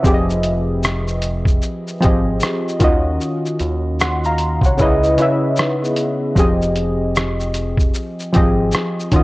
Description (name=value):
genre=lo-fi hip hop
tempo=76 BPM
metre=4/4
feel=swing 64% on 16ths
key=unclear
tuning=A4 = 439 Hz
part: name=warm analog keys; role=accompaniment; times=0.0-9.2 s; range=Db3 to C6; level=-18 LUFS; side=equal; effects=chorus
part: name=deep dub picked electric bass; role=bass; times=0.0-9.2 s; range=F1 to Eb2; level=-22 LUFS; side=equal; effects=tube saturation
part: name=lo-fi sampler-style drum kit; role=drums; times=0.0-9.2 s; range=hi-hat, kick drum, rim click, shaker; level=-18 LUFS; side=equal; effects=none
part: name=vibraphone with soft mallets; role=second line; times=4.8-6.3 s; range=Cb4 to Fb5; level=-24 LUFS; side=equal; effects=tape echo
room=light reverb, digital ambience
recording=worn, warbling old tape, cassette tape, warbly pitch drift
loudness=-15 LUFS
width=side -20 dB against mid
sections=0.0-9.2 A section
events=none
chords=0.0 Fm9; 2.8 Ebm9; 4.8 Dbm9; 6.4 Fm9